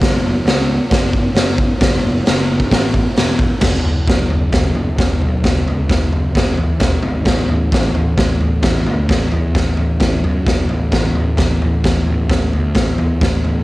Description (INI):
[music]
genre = garage rock duo or trio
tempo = 131 BPM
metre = 4/4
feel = straight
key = F# minor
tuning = A4 = 440 Hz
[part]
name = fuzz picked electric bass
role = bass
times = 0.0-13.6 s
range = E1 to F#2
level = -20 LUFS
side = equal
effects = overdrive
[part]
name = raw garage drum kit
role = drums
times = 0.0-13.6 s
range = crash cymbal, hi-hat, kick drum, snare drum, toms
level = -14 LUFS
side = equal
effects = none
[sound]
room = moderate studio reverb, RT60 0.6 s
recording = home recording on cassette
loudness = -13 LUFS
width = side -19 dB against mid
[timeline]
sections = 0.0-3.6 A section; 3.6-13.6 B section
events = none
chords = none